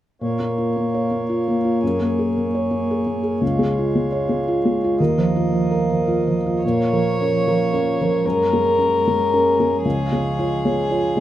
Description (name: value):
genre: neoclassical piano and strings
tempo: 112 BPM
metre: 3/4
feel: rubato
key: unclear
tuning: A4 = 439 Hz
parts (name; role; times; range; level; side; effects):
- felt-muted upright piano; accompaniment; 0.2-11.2 s; Db2 to Db5; -19 LUFS; equal; none
- pedal harmonium; sustained chords; 0.2-11.2 s; Ab3 to Eb5; -25 LUFS; right 1 dB; none
- rich violin; melody; 6.6-11.2 s; Ab4 to Db5; -21 LUFS; left 3 dB; none
- dark cello; second line; 6.6-11.2 s; F3 to Ab3; -31 LUFS; right 4 dB; none
room: wet small room reverb, RT60 0.6 s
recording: rough home demo mix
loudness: -17 LUFS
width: side -12 dB against mid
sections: 0.2-6.6 A section; 6.6-11.2 B section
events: none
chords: 0.2 Bbm; 1.8 Gbadd9; 3.4 Db; 5.0 Ebsus2; 6.6 Bbm; 8.2 Gbadd9; 9.8 Db